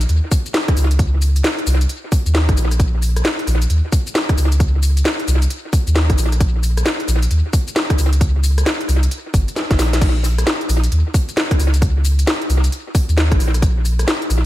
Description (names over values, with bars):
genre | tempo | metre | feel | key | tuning
UK garage, two-step garage | 133 BPM | 4/4 | swing 63% on 16ths | unclear | A4 = 440 Hz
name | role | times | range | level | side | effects
soft dub sub bass | bass | 0.0-14.5 s | G1 to Eb2 | -15 LUFS | equal | none
garage drum kit | drums | 0.0-14.4 s | crash cymbal, hi-hat, rim click, shaker, snare drum | -21 LUFS | left 1 dB | analog delay
electronic kick drum | drums | 0.3-13.7 s | none | -17 LUFS | equal | none
room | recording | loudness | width
little or no reverb | echo-heavy mix | -14 LUFS | side -15 dB against mid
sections
0.0-14.5 A section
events
drum fill 9.6-10.0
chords
none